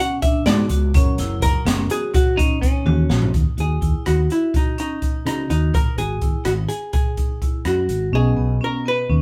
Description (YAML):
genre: progressive instrumental, band music in an uneven meter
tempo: 251 BPM (eighths)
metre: 5/8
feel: straight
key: Eb phrygian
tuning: A4 = 440 Hz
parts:
  - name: archtop guitar, miked and amplified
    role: melody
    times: 0.0-9.2 s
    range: Eb4 to F#5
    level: -25 LUFS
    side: equal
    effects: none
  - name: dark grand piano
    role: accompaniment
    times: 0.0-3.3, 8.1-9.2 s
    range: B2 to D#5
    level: -32 LUFS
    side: equal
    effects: none
  - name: vibraphone with hard mallets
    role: arpeggios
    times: 0.0-9.2 s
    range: B3 to Ab4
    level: -32 LUFS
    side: equal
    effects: none
  - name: open jazz drum kit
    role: drums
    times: 0.2-8.0 s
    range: hi-hat, kick drum, rim click, snare drum, toms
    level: -22 LUFS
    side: equal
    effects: none
  - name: fretless electric bass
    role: bass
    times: 0.5-9.2 s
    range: Gb1 to Db3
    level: -22 LUFS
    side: equal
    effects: none
  - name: semi-hollow electric guitar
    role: second line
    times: 2.4-3.3 s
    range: Db4 to Eb4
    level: -27 LUFS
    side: equal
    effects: none
room: light reverb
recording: band playing live in one room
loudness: -20 LUFS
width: mono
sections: 0.0-3.3 A section; 3.3-8.1 B section; 8.1-9.2 C section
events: hollow-body jazz guitar solo 0.0-3.3; drum fill 2.9-3.3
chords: 0.0 Bm; 1.0 Gb; 3.3 Ebm; 5.7 Ab5; 8.1 B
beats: 0.00 0.24 0.48 0.71 | 0.95 1.19 1.43 1.67 1.91 | 2.15 2.39 2.63 2.87 3.11 | 3.35 3.59 3.83 4.07 4.30 | 4.54 4.78 5.02 5.26 5.50 | 5.74 5.98 6.22 6.46 6.70 | 6.94 7.18 7.42 7.66 7.90 | 8.14 8.38 8.62 8.85 9.09